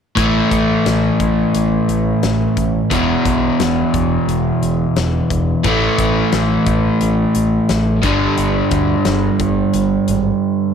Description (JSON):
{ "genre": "classic rock", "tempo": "88 BPM", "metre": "4/4", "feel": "straight", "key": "unclear", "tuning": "A4 = 440 Hz", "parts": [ { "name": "crunchy overdriven guitar", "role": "riff", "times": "0.2-10.7 s", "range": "E2 to A3", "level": "-14 LUFS", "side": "equal", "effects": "none" }, { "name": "growling fingered electric bass", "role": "bass", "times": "0.2-10.3 s", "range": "E1 to D2", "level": "-22 LUFS", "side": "equal", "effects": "overdrive" }, { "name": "huge arena drum kit", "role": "drums", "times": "0.2-10.2 s", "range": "hi-hat, kick drum, snare drum", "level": "-24 LUFS", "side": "left 3 dB", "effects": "none" } ], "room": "light reverb, studio ambience", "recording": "1960s-style stereo", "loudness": "-14 LUFS", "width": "side -7 dB against mid", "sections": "0.2-10.7 A section", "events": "none", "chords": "0.2 A5; 2.9 E5; 5.6 A5; 8.0 G5" }